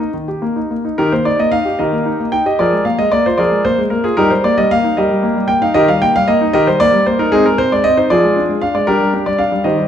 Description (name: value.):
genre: classical-period piano sonatina.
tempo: 76 BPM (dotted quarters).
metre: 6/8.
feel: rubato.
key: Eb major.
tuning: A4 = 440 Hz.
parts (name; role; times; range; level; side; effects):
clear grand piano; solo; 0.0-9.9 s; Eb3 to G5; -12 LUFS; equal; none.
room: moderate recital hall reverb, RT60 1.4 s.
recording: dark, warm production.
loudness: -12 LUFS.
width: side -9 dB against mid.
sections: 1.0-9.9 A section.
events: none.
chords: 0.0 Eb; 2.6 Bb5/F; 4.2 Eb/G; 5.8 Eb; 7.3 Ab; 8.1 Ddim/F; 8.9 Gm.